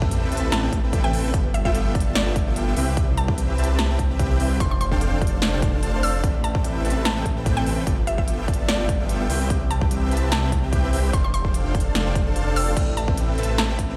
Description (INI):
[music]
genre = future bass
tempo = 147 BPM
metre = 4/4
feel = swing 53% on 16ths, half-time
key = A minor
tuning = A4 = 444 Hz
[part]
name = mallet-like synth pluck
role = melody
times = 0.0-13.7 s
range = D5 to E6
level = -34 LUFS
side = equal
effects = chorus, sidechain pumping, dub echo
[part]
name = concert harp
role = arpeggios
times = 0.0-14.0 s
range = G4 to G5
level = -38 LUFS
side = equal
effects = sidechain pumping, dub echo
[part]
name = dense compressed supersaw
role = riff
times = 0.0-14.0 s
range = B3 to A5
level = -30 LUFS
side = equal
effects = sidechain pumping
[part]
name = detuned saw bass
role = bass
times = 0.0-14.0 s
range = F1 to C2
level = -26 LUFS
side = equal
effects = chorus, sidechain pumping
[part]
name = electronic kick drum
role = drums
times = 0.0-13.9 s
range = none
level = -26 LUFS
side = equal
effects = overdrive
[part]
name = sub drop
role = sound effects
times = 0.0-1.3 s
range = none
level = -33 LUFS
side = equal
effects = none
[part]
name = big-room dance drum kit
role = drums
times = 0.1-13.9 s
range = crash cymbal, hi-hat, snare drum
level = -31 LUFS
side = equal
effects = none
[sound]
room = digital ambience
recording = played on a big sound system in a bare room, large studio reverb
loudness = -22 LUFS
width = mono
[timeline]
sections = 0.0-14.0 A section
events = impact 0.0-1.3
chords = 0.0 Am9; 1.3 G13; 2.8 Cmaj7; 4.6 F69; 6.2 Am9; 7.9 G13; 9.3 Cmaj7; 11.1 F69; 12.8 Am9